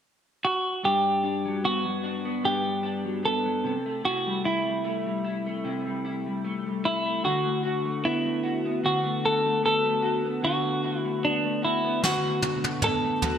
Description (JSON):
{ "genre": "indie pop, bedroom pop", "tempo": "75 BPM", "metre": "4/4", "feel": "swing 55% on 16ths", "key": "D mixolydian", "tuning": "A4 = 442 Hz", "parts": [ { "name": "semi-hollow electric guitar", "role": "melody", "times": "0.4-13.4 s", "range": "D4 to A4", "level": "-26 LUFS", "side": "right 1 dB", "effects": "lush chorus, digital delay" }, { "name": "clean electric guitar", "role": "accompaniment", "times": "0.8-13.4 s", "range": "G2 to F#4", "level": "-28 LUFS", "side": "left 2 dB", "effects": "analog chorus, warbly pitch drift" }, { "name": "soft brush drum kit", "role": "drums", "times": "12.0-13.4 s", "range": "snare drum, toms", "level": "-28 LUFS", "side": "right 1 dB", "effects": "gated reverb" } ], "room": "moderate plate reverb, RT60 1.7 s, small room ambience", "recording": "bright 1980s-style digital production", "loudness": "-24 LUFS", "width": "side -8 dB against mid", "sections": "0.8-13.4 A section", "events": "drum fill 12.0-13.4", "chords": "0.0 N.C.; 0.8 Gmaj7; 3.6 C6; 7.2 D6" }